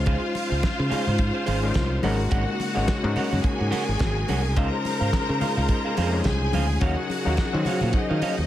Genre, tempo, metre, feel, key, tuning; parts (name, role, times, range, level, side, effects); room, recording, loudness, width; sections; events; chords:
disco; 107 BPM; 4/4; swing 56% on 16ths; A4 = 438 Hz
bright studio string section; second line; 0.0-8.5 s; Eb4 to Bb5; -30 LUFS; left 3 dB
overdriven reed electric piano; accompaniment; 0.0-8.5 s; Gb3 to Eb5; -28 LUFS; left 3 dB; fast tremolo
clear symphonic string section; sustained chords; 0.0-8.5 s; Db3 to C5; -32 LUFS; right 2 dB
modern bright fingered electric bass; bass; 0.0-8.5 s; Ab1 to Eb3; -25 LUFS; equal
semi-hollow electric guitar; accompaniment; 0.1-8.4 s; Gb4 to Gb5; -32 LUFS; right 8 dB
damped 70s drum kit; drums; 0.1-8.4 s; hi-hat, kick drum, snare drum; -28 LUFS; equal; gated reverb
congas; percussion; 0.1-8.4 s; -32 LUFS; left 2 dB
small room reverb; -21 LUFS; side -13 dB against mid
0.0-8.5 A section
0.0 Dbmaj7; 2.0 Ab9sus4; 4.6 Dbmaj7; 6.8 Ebm9